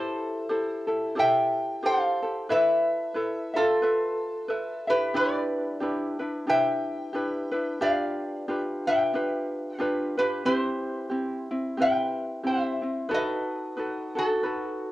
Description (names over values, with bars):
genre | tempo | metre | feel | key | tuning
Hawaiian | 90 BPM | 4/4 | swing 59% on 8ths | unclear | A4 = 442 Hz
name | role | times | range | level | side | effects
metal-body resonator slide guitar | melody | 0.0-14.9 s | F4 to G5 | -26 LUFS | equal | cassette tape
ukulele | accompaniment | 0.0-14.9 s | C4 to E5 | -29 LUFS | equal | cassette tape
room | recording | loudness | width
moderate spring reverb, RT60 2.0 s, small room reverb | home recording on cassette | -24 LUFS | side -16 dB against mid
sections
0.0-14.9 A section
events
none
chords
0.0 C6; 2.5 Esus4; 5.1 Em7; 7.8 G7; 10.5 Cmaj7; 13.1 B7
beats
0.48 1.15 1.81 | 2.48 3.14 3.81 4.47 | 5.13 5.80 6.46 7.13 | 7.79 8.46 9.12 9.79 | 10.45 11.12 11.78 12.45 | 13.11 13.78 14.44